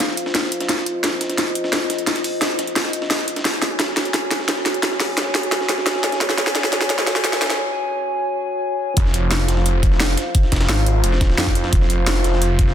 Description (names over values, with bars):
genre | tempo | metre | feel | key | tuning
dark technical drum and bass | 174 BPM | 4/4 | straight | F phrygian | A4 = 440 Hz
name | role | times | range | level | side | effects
dark analog pad | sustained chords | 0.0-12.7 s | F4 to Ab5 | -24 LUFS | equal | wide subtle chorus, sidechain pumping
breakbeat sampler-style drum kit | drums | 0.0-12.7 s | hi-hat, snare drum | -29 LUFS | equal | high-pass filter on hats, high-pass filter on snare
drum and bass drum kit | drums | 0.0-12.7 s | hi-hat, snare drum | -20 LUFS | equal | overdrive
snarling distorted saw bass | bass | 9.0-12.7 s | F1 to F2 | -19 LUFS | equal | distortion, tube saturation
electronic kick drum | drums | 9.0-12.7 s | none | -17 LUFS | equal | none
room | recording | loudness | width
moderate lush hall reverb, RT60 2.1 s | dense, heavily limited modern master, high-pass filter | -17 LUFS | side -10 dB against mid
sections
0.0-9.0 A section; 9.0-12.7 B section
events
build-up 0.0-9.0; drum fill 0.0-7.6; break 7.6-9.0; drop 9.0-12.7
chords
0.0 F5; 3.5 Gb5; 9.0 Fm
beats
0.00 0.35 | 0.69 1.04 1.38 1.73 | 2.07 2.42 2.76 3.11 | 3.45 3.79 4.14 4.49 | 4.83 5.17 5.52 5.86 | 6.21 6.55 6.90 7.24 | 7.59 7.93 8.28 8.62 | 8.97 9.31 9.66 10.00 | 10.35 10.69 11.04 11.38 | 11.73 12.07 12.42